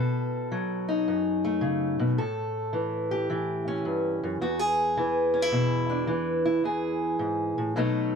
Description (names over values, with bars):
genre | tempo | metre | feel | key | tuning
blues | 108 BPM | 4/4 | swing 67% on 8ths | E major | A4 = 440 Hz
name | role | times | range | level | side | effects
fingerpicked steel-string acoustic guitar | solo | 0.0-8.2 s | E2 to A4 | -24 LUFS | equal | none
room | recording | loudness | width
light reverb | close, detailed microphones | -25 LUFS | side -6 dB against mid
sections
0.0-8.2 A section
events
none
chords
0.0 B7; 2.2 A7; 4.4 E7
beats
0.50 1.06 1.62 | 2.18 2.74 3.29 3.85 | 4.41 4.97 5.53 6.08 | 6.64 7.20 7.76